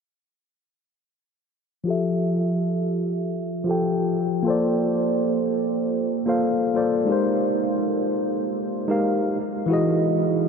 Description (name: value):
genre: chillout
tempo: 92 BPM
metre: 4/4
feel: swing 55% on 16ths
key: F major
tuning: A4 = 440 Hz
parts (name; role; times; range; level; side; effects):
- mellow tine electric piano; accompaniment; 1.8-10.5 s; E3 to G5; -20 LUFS; moving between left 5 dB and right 2 dB; auto-pan, low-pass filter, diffuse ambient delay
room: wet huge ambient reverb, RT60 9.1 s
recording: dreamy mix soaked in reverb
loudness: -21 LUFS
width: side -6 dB against mid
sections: 1.9-10.5 A section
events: filter sweep on tine electric piano 1.9-10.5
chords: 1.9 Fmaj9; 4.5 Bbmaj9; 7.1 Abmaj9; 9.4 Emaj9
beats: | 1.87 2.52 3.17 3.82 | 4.47 5.13 5.78 6.43 | 7.08 7.74 8.39 9.04 | 9.69 10.34